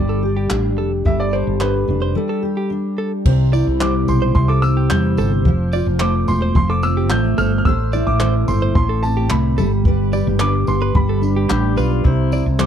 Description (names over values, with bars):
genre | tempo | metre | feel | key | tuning
acoustic pop | 109 BPM | 4/4 | straight | C major | A4 = 440 Hz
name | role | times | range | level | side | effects
warm upright piano | melody | 0.0-12.7 s | A4 to G6 | -24 LUFS | right 1 dB | none
fingerpicked steel-string acoustic guitar | accompaniment | 0.0-12.7 s | A2 to C5 | -19 LUFS | equal | double-tracked left and right
woody fretless electric bass | bass | 0.0-12.7 s | E1 to E2 | -19 LUFS | equal | wide subtle chorus
direct-recorded clean electric guitar | arpeggios | 0.1-12.7 s | G4 to D5 | -27 LUFS | right 5 dB | wide subtle chorus
compact cocktail drum kit | drums | 0.5-12.7 s | crash cymbal, handclaps, kick drum, tambourine | -19 LUFS | equal | none
pedal steel guitar | second line | 11.5-12.4 s | E4 to G4 | -26 LUFS | left 11 dB | none
room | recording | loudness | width
little or no reverb | dry, close 1970s-style studio recording | -15 LUFS | side -9 dB against mid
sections
0.0-3.3 A section; 3.3-12.7 B section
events
break 2.2-3.3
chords
0.0 Gsus2; 3.3 C; 5.5 F; 7.7 Am; 9.6 G; 12.1 C